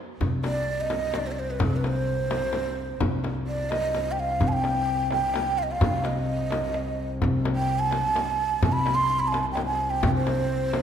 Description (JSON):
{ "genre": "Persian modal ensemble", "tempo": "85 BPM (dotted quarters)", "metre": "6/8", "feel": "straight", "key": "C avaz esfahan", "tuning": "A4 = 440 Hz", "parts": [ { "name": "upright bass", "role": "bass", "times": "0.2-10.8 s", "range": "C3", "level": "-28 LUFS", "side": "left 2 dB", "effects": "none" }, { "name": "rich double bass", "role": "drone", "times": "0.2-10.8 s", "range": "C2", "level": "-33 LUFS", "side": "left 1 dB", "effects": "none" }, { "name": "frame drum", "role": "percussion", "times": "0.2-10.8 s", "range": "none", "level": "-31 LUFS", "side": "left 4 dB", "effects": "none" }, { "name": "tombak", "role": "percussion", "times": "0.2-10.8 s", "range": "none", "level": "-31 LUFS", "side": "right 2 dB", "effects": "none" }, { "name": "breathy mellow ney", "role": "melody", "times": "0.4-10.8 s", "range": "Ab4+49c to C6", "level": "-26 LUFS", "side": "right 3 dB", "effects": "slapback echo" } ], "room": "moderate concert hall reverb, RT60 1.8 s", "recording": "none", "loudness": "-23 LUFS", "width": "side -8 dB against mid", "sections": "0.2-10.8 A section", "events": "none", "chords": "none" }